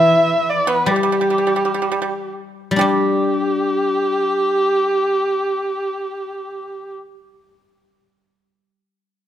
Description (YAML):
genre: chinese traditional, Chinese chamber ensemble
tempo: 54-76 BPM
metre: 2/4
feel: rubato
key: unclear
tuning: A4 = 440 Hz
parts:
  - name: dark erhu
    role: melody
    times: 0.0-6.9 s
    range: G4 to E5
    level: -18 LUFS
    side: right 1 dB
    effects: none
  - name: pipa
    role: second line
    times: 0.0-6.9 s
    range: G3 to E4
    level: -23 LUFS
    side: right 6 dB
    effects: none
  - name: guzheng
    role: accompaniment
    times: 0.0-8.8 s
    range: E3 to G4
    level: -22 LUFS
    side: left 4 dB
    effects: none
room: moderate concert hall reverb, RT60 2.0 s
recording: close, detailed microphones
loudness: -16 LUFS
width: side -10 dB against mid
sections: 0.0-2.8 A section; 2.8-7.2 B section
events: slowing down 0.0-2.8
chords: none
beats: 0.06 | 0.89 1.79 | 2.83 3.93 | 5.01 6.08